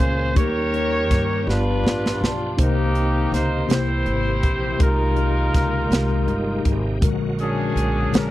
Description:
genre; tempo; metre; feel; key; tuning
slow gospel; 54 BPM (dotted quarters); 6/8; straight; unclear; A4 = 438 Hz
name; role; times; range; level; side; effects
clear horn section; melody; 0.0-8.3 s; Bb3 to Db5; -24 LUFS; equal; slapback echo
mellow tine electric piano; accompaniment; 0.0-8.3 s; G2 to D5; -24 LUFS; left 2 dB; slow stereo tremolo
bright tonewheel organ; sustained chords; 0.0-8.3 s; Db3 to C5; -32 LUFS; right 2 dB; slow rotary speaker, chorus vibrato
upright bass; bass; 0.0-8.3 s; G1 to G2; -24 LUFS; equal; none
crisp fusion drum kit; drums; 0.0-8.3 s; hi-hat, kick drum, snare drum; -20 LUFS; equal; none
room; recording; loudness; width
little or no reverb; dry, close 1970s-style studio recording; -18 LUFS; side -15 dB against mid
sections
0.0-8.3 A section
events
drum fill 1.5-2.6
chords
0.4 Eb7; 1.5 G7; 2.6 Cm7; 3.7 C7; 4.8 Fm11/C; 7.0 Bb7alt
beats
| 0.36 1.47 | 2.58 3.69 | 4.80 5.91 | 7.02 8.13

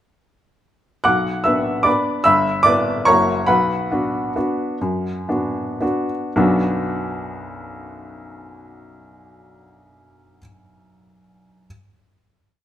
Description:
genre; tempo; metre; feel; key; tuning
classical, piano waltz; 107-154 BPM; 3/4; rubato; B minor; A4 = 440 Hz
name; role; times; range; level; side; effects
clear upright piano; solo; 1.0-11.7 s; F#1 to F#6; -17 LUFS; equal; none
room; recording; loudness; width
moderate recital hall reverb, RT60 1.8 s; minimal, uncompressed stereo recording; -17 LUFS; side -11 dB against mid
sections
1.1-6.4 A section; 6.4-9.6 final chord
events
slowing down 2.9-6.4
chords
1.1 Bm; 2.3 Em/G; 3.1 F#7; 3.5 Bm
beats
| 1.06 1.46 1.86 | 2.26 2.65 3.06 | 3.48 3.90 4.36 | 4.81 5.29 5.82 | 6.36 6.89 7.44 | 7.98 8.50 9.04

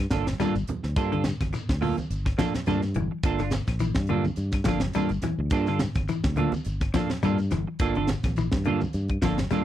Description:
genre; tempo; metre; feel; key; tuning
afrobeat; 105 BPM; 4/4; swing 56% on 16ths; G dorian; A4 = 440 Hz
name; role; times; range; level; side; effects
clean electric guitar; stabs; 0.0-9.6 s; Bb3 to A4; -28 LUFS; right 7 dB; analog chorus
fingered electric bass; bass; 0.0-9.4 s; G1 to G2; -28 LUFS; equal; none
claves; percussion; 0.0-9.6 s; none; -43 LUFS; left 25 dB; none
tight funk drum kit; drums; 0.1-9.6 s; hi-hat, kick drum, snare drum; -28 LUFS; equal; none
congas; percussion; 0.1-9.6 s; none; -34 LUFS; right 3 dB; none
shekere; percussion; 0.1-9.6 s; none; -36 LUFS; left 1 dB; none
clean electric guitar; arpeggios; 0.4-9.6 s; D3 to G3; -29 LUFS; left 6 dB; none
room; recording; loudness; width
little or no reverb; dry, close 1970s-style studio recording; -24 LUFS; side -12 dB against mid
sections
0.0-9.6 A section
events
none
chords
0.0 Gm9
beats
0.40 | 0.97 1.54 2.11 2.68 | 3.25 3.81 4.38 4.95 | 5.52 6.09 6.66 7.23 | 7.80 8.37 8.94 9.51

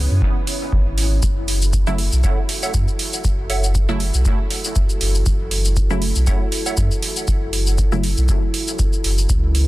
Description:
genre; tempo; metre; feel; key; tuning
dub techno; 119 BPM; 4/4; swing 55% on 16ths; F# minor; A4 = 441 Hz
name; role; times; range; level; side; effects
dark analog pad; sustained chords; 0.0-9.7 s; C#4 to C#5; -30 LUFS; right 1 dB; chorus, sidechain pumping
warm sub bass; bass; 0.0-9.7 s; F#1 to F#2; -19 LUFS; equal; sidechain pumping
wind-like tuned noise texture; texture; 0.0-1.2 s; E4; -35 LUFS; left 2 dB; built-in reverb, sidechain pumping
electronic kick drum; drums; 0.2-9.4 s; none; -20 LUFS; equal; none
electronic hi-hat and shaker; drums; 0.5-9.7 s; none; -24 LUFS; right 1 dB; none
filtered dub chord stab; stabs; 1.9-8.0 s; C#3 to E4; -29 LUFS; right 1 dB; chorus, phaser, sidechain pumping, dub echo
wavetable chord stab; riff; 2.2-6.8 s; A4 to F#5; -32 LUFS; right 3 dB; sidechain pumping, dub echo
room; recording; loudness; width
little or no reverb; dense, heavily limited modern master; -16 LUFS; side -18 dB against mid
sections
0.0-1.2 A section; 1.2-9.7 A section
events
filter sweep on synth stab 1.2-9.7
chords
0.0 C#m; 1.2 F#m7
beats
0.22 0.72 | 1.23 1.73 2.24 2.74 | 3.25 3.75 4.25 4.76 | 5.26 5.77 6.27 6.78 | 7.28 7.78 8.29 8.79 | 9.30

